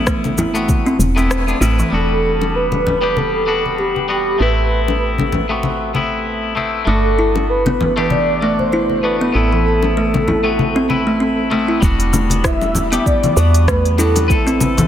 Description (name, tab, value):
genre	organic downtempo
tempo	97 BPM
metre	4/4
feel	swing 56% on 16ths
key	A dorian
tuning	A4 = 440 Hz
part	twangy electric guitar	accompaniment	0.0-14.9 s	B2 to B4	-20 LUFS	left 3 dB	sidechain pumping, ping-pong delay
part	woody FM bass	bass	0.0-14.9 s	E1 to E2	-20 LUFS	right 1 dB	none
part	kalimba	arpeggios	0.1-1.9, 6.9-14.9 s	E3 to E4	-20 LUFS	right 1 dB	ping-pong delay
part	deep house drum kit	drums	0.1-1.9, 11.8-14.9 s	hi-hat, rim click, shaker	-24 LUFS	equal	none
part	electronic kick drum	drums	0.1-0.8, 11.8-14.4 s	none	-18 LUFS	right 1 dB	none
part	bongos and congas	percussion	0.2-14.9 s	none	-21 LUFS	left 3 dB	none
part	breathy flute-like synth lead	melody	1.9-14.6 s	G4 to E5	-20 LUFS	equal	ensemble chorus, cassette tape, tape echo
room	light reverb, digital ambience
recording	none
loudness	-14 LUFS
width	side -10 dB against mid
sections	0.0-1.9 A section; 1.9-11.8 B section; 11.8-14.9 C section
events	kick drops out 1.3-1.9; band accent 1.3-1.6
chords	0.0 Amadd9; 1.9 Em7; 4.4 Amadd9; 6.9 Gmaj7; 9.3 Amadd9; 11.8 Em7; 14.3 Amadd9